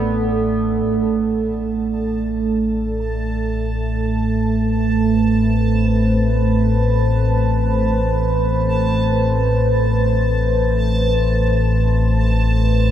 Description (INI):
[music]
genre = dark ambient drone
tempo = free time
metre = none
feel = none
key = A minor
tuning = A4 = 440 Hz
[part]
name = deep dark ambient pad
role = sustained chords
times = 0.0-12.9 s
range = A3 to A5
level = -19 LUFS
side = right 3 dB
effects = chorus, built-in reverb
[part]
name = deep rumbling drone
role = drone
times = 0.0-12.9 s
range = A1 to A2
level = -18 LUFS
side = left 1 dB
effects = built-in reverb
[part]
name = bubbling stepped-filter texture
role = texture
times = 1.8-12.9 s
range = A5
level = -30 LUFS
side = right 2 dB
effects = chorus, built-in reverb
[sound]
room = wet cathedral reverb, RT60 4.8 s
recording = none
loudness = -16 LUFS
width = side -10 dB against mid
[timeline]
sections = 0.8-12.9 A section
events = fade-in on synth texture 0.8-12.9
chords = 0.0 Esus4/A (rootless); 0.8 Am